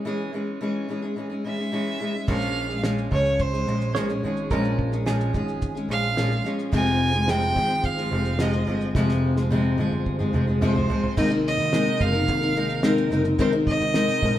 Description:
acoustic pop; 108 BPM; 4/4; straight; Ab mixolydian from 11.2 s; A4 = 439 Hz
fingerpicked steel-string acoustic guitar; accompaniment; 0.0-14.4 s; F2 to Bb4; -24 LUFS; left 2 dB
rich violin; melody; 1.5-14.4 s; C5 to Ab5; -26 LUFS; right 2 dB
overdriven picked electric bass; bass; 2.3-14.4 s; F1 to Db2; -27 LUFS; equal
cloth-damped thuddy drum kit; drums; 2.3-14.4 s; crash cymbal, kick drum, shaker, snare drum, toms; -28 LUFS; right 1 dB
direct-recorded clean electric guitar; second line; 3.9-5.7 s; Ab4 to Db5; -32 LUFS; right 5 dB
mellow tonewheel organ; sustained chords; 6.7-14.4 s; C3 to C5; -33 LUFS; right 2 dB; chorus vibrato
moderate stone room reverb, RT60 1.2 s; band playing live in one room; -21 LUFS; side -12 dB against mid
0.0-2.3 A section; 2.3-11.2 B section; 11.2-14.4 C section
drum fill 9.0-11.2
0.0 Dbm/Fb; 2.3 Bbm7; 6.7 Fm; 11.2 Abadd9
| 0.06 0.61 1.17 1.73 | 2.29 2.84 3.40 3.95 | 4.51 5.07 5.62 6.18 | 6.73 7.29 7.84 8.40 | 8.95 9.51 10.06 10.62 | 11.17 11.73 12.28 12.84 | 13.39 13.94

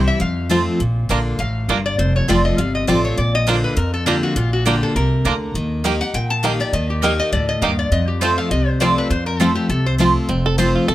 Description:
bluegrass; 202 BPM; 4/4; swing 56% on 8ths; F mixolydian; A4 = 438 Hz
lap resonator guitar; melody; 0.0-9.9 s; F4 to A5; -23 LUFS; left 2 dB
picked steel-string acoustic guitar; accompaniment; 0.0-10.9 s; F2 to G4; -20 LUFS; left 2 dB
upright bass; bass; 0.0-10.9 s; F1 to F2; -20 LUFS; equal
bluegrass banjo; melody; 0.5-10.9 s; Bb3 to C5; -23 LUFS; right 3 dB
mandolin; stabs; 0.5-10.7 s; Bb3 to Bb5; -24 LUFS; right 5 dB
little or no reverb; -16 LUFS; side -14 dB against mid
0.8-10.3 A section
0.2 F; 0.8 Bb; 2.0 F; 3.2 Bb; 5.5 Eb; 7.9 F
0.21 0.51 | 0.80 1.10 1.40 1.69 | 1.99 2.29 2.58 2.88 | 3.18 3.47 3.77 4.07 | 4.36 4.66 4.96 5.25 | 5.55 5.85 6.14 6.44 | 6.74 7.03 7.33 7.62 | 7.92 8.22 8.51 8.81 | 9.11 9.40 9.70 9.99 | 10.29 10.59 10.88

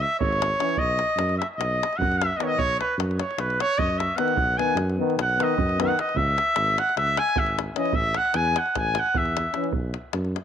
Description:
balkan folk, Balkan brass band; 302 BPM (eighths); 9/8; straight; B mixolydian; A4 = 442 Hz
clear trumpet; melody; 0.0-9.7 s; B4 to G#5; -23 LUFS; equal; slapback echo
mellow tuba; bass; 0.0-10.4 s; G#1 to F#2; -28 LUFS; equal
davul; percussion; 0.2-10.4 s; -30 LUFS; equal
bright trombone; accompaniment; 0.6-9.7 s; D#3 to E3; -33 LUFS; right 10 dB
warm euphonium; accompaniment; 0.6-9.7 s; B3 to C#4; -29 LUFS; left 11 dB
moderate spring reverb, RT60 2.0 s; 1960s-style stereo with parts hard left and right; -21 LUFS; side -9 dB against mid
0.0-10.4 A section
trumpet solo 0.0-10.4
0.0 C#m; 0.8 B; 6.2 C#m; 7.9 A5; 9.7 B5
0.19 0.39 0.59 | 0.79 0.99 1.19 1.38 1.58 1.78 1.98 2.18 2.38 | 2.58 2.78 2.98 3.17 3.37 3.57 3.77 3.97 4.17 | 4.37 4.56 4.76 4.96 5.16 5.36 5.56 5.76 5.95 | 6.15 6.35 6.55 6.75 6.95 7.14 7.34 7.54 7.74 | 7.94 8.14 8.34 8.53 8.73 8.93 9.13 9.33 9.53 | 9.72 9.92 10.12 10.32

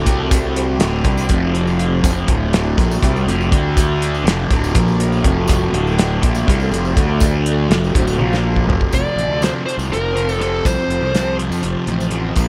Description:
psychedelic rock; 244 BPM (eighths); 7/8; straight; A4 = 442 Hz
phased string machine; sustained chords; 0.0-12.5 s; C3 to A5; -30 LUFS; equal
fuzz guitar; riff; 0.0-12.5 s; D2 to D4; -23 LUFS; equal; distortion, phaser
fuzz fingered electric bass; bass; 0.0-12.5 s; D1 to F2; -22 LUFS; equal; overdrive
tanpura; drone; 0.0-12.5 s; D2 to D3; -29 LUFS; equal
cloth-damped thuddy drum kit; drums; 0.1-12.5 s; hi-hat, kick drum, snare drum, toms; -20 LUFS; equal
tambourine; percussion; 0.3-12.5 s; -37 LUFS; equal
fuzz lead guitar; melody; 8.9-11.4 s; A4 to D5; -24 LUFS; equal; distortion, analog delay
light reverb, studio reverb; -17 LUFS; mono
0.0-8.9 A section; 8.9-12.5 B section
drum fill 8.2-8.9
0.1 C5; 0.8 Dm; 1.3 F5; 2.0 Fadd9; 2.3 D5; 2.8 Fadd9; 3.5 D5; 4.3 Fadd9; 4.8 Bb5; 5.2 Fadd9; 5.7 D5; 6.2 Fadd9; 7.0 D5; 7.7 Fadd9; 8.2 Bb5; 8.7 Fadd9; 8.9 F
0.07 | 0.31 0.56 0.81 1.05 1.30 1.55 1.79 | 2.04 2.29 2.53 2.78 3.03 3.27 3.52 | 3.77 4.01 4.26 4.50 4.75 5.00 5.24 | 5.49 5.73 5.98 6.22 6.47 6.72 6.96 | 7.21 7.45 7.70 7.94 8.19 8.44 8.68 | 8.93 9.17 9.42 9.67 9.91 10.16 10.40 | 10.65 10.90 11.14 11.39 11.63 11.88 12.13 | 12.37

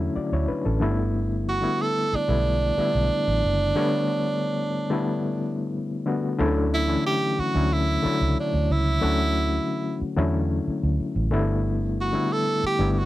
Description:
lush 1970s-style soul; 91 BPM; 4/4; straight; D major; A4 = 440 Hz
overdriven reed electric piano; accompaniment; 0.0-13.1 s; D3 to D5; -25 LUFS; left 2 dB; fast tremolo
vintage muted fingered electric bass; bass; 0.0-13.1 s; F#1 to E2; -25 LUFS; right 1 dB
bright tenor saxophone; melody; 1.5-13.1 s; D4 to A4; -25 LUFS; right 3 dB
little or no reverb; dry, close 1970s-style studio recording; -22 LUFS; side -15 dB against mid
0.0-6.4 A section; 6.4-13.1 A section
break 3.8-6.4
0.0 Dmaj9; 0.8 G69; 6.4 Dmaj9; 11.3 G69
0.48 | 1.14 1.79 2.45 3.11 | 3.77 4.42 5.08 5.74 | 6.39 7.05 7.71 8.36 | 9.02 9.68 10.33 10.99 | 11.65 12.30 12.96

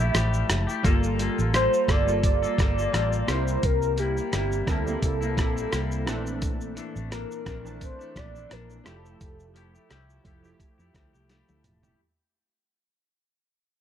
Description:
indie pop, bedroom pop; 86 BPM; 4/4; swing 55% on 16ths; F major; A4 = 440 Hz
warm velvety synth lead; melody; 0.0-9.9 s; G4 to E5; -28 LUFS; equal; lush chorus
clean electric guitar; accompaniment; 0.0-12.0 s; Bb2 to A4; -32 LUFS; left 5 dB; wide subtle chorus, vibrato effect
vintage muted fingered electric bass; bass; 0.0-11.9 s; E1 to F2; -28 LUFS; equal
dusty soul sampler-style drum kit; drums; 0.1-12.0 s; hi-hat, kick drum, rim click, shaker, snare drum, toms; -26 LUFS; equal
warm analog keys; accompaniment; 0.8-12.0 s; E3 to A5; -34 LUFS; right 4 dB; chorus, cassette tape
little or no reverb; -23 LUFS; side -10 dB against mid
0.0-12.0 A section
fade-out 0.0-12.0; drum fill 11.3-12.0
0.0 Fmaj9; 0.8 Gm9; 3.3 C7; 6.1 Bbmaj9#11; 8.9 Fmaj9
0.15 | 0.84 1.54 2.24 2.94 | 3.63 4.33 5.03 5.72 | 6.42 7.12 7.81 8.51 | 9.21 9.90 10.60 11.30

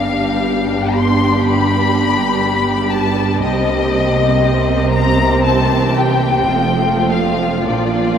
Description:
classical, slow romantic movement for string orchestra; 50-62 BPM; 4/4; rubato; A4 = 438 Hz
rich chamber violin section; melody; 0.0-8.2 s; D5 to C6; -18 LUFS; left 5 dB
rich chamber violin section; second line; 0.0-8.2 s; C4 to G4; -19 LUFS; left 1 dB
rich chamber viola section; accompaniment; 0.0-8.2 s; E3 to B3; -20 LUFS; right 2 dB
rich chamber cello section; bass; 0.0-8.2 s; F2 to C3; -21 LUFS; right 4 dB
rich symphonic double bass section; bass; 0.0-8.2 s; F1 to C2; -21 LUFS; right 4 dB
wet cathedral reverb, RT60 5.9 s; in a vast, echoing space; -13 LUFS; side -8 dB against mid
0.0-8.2 A section
0.0 G7; 3.4 Cm7; 5.4 C7; 6.5 F; 7.7 Bb
0.43 1.43 2.42 | 3.42 4.42 5.43 6.49 | 7.65

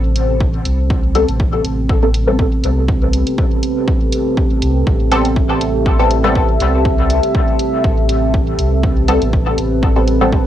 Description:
dub techno; 121 BPM; 4/4; swing 54% on 16ths; A minor; A4 = 442 Hz
deep dark ambient pad; sustained chords; 0.0-10.5 s; C4 to E5; -19 LUFS; right 1 dB; chorus, built-in reverb, sidechain pumping, cassette tape
warm sub bass; bass; 0.0-10.4 s; A1 to C2; -18 LUFS; equal; tube saturation, sidechain pumping
electronic hi-hat; drums; 0.2-10.2 s; -26 LUFS; right 2 dB; cassette tape
electronic kick drum; drums; 0.4-10.4 s; -17 LUFS; equal; cassette tape
filtered dub chord stab; stabs; 1.1-10.4 s; G3 to A4; -18 LUFS; left 2 dB; chorus, phaser, sidechain pumping, cassette tape, dub echo
light reverb; home recording on cassette; -12 LUFS; side -11 dB against mid
0.0-10.5 A section
0.0 Am9
0.41 0.90 1.40 | 1.89 2.39 2.88 3.38 | 3.88 4.37 4.87 5.36 | 5.86 6.36 6.85 7.35 | 7.84 8.34 8.84 9.33 | 9.83 10.32

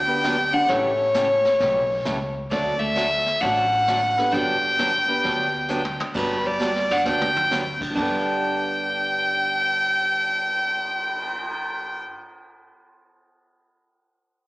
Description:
country, western swing; 132 BPM; 4/4; swing 65% on 8ths; G major; A4 = 437 Hz
warm fiddle; melody; 0.0-12.0 s; B4 to G5; -21 LUFS; equal; slapback echo
vintage hollow-body jazz guitar; second line; 0.0-12.0 s; G3 to D4; -31 LUFS; right 1 dB; slapback echo
upright bass; bass; 0.0-12.0 s; G1 to D2; -36 LUFS; equal
warm upright piano; accompaniment; 0.1-12.1 s; G2 to C#5; -33 LUFS; left 1 dB; slapback echo
picked steel-string acoustic guitar; accompaniment; 0.2-12.1 s; G2 to G4; -29 LUFS; right 1 dB; slapback echo
jazz brush drum kit; drums; 0.2-11.5 s; brushed snare drum, crash cymbal, cymbal swell, hi-hat, kick drum, snare drum, toms; -34 LUFS; equal
moderate club reverb, RT60 0.9 s; live gig heard through the venue's PA, recital hall reverb, small speaker sound; -20 LUFS; side -20 dB against mid
0.0-6.1 A section; 6.1-8.0 B section; 8.0-11.6 C section
drum fill 5.7-6.1, 6.6-7.5
0.0 Gmaj7; 0.7 A7; 2.5 D; 4.3 Gmaj7; 8.0 G
0.23 | 0.69 1.15 1.60 2.06 | 2.51 2.97 3.42 3.88 | 4.33 4.79 5.24 5.69 | 6.15 6.60 7.06 7.51 | 7.97 8.42 8.88 9.33 | 9.79 10.24 10.70 11.15

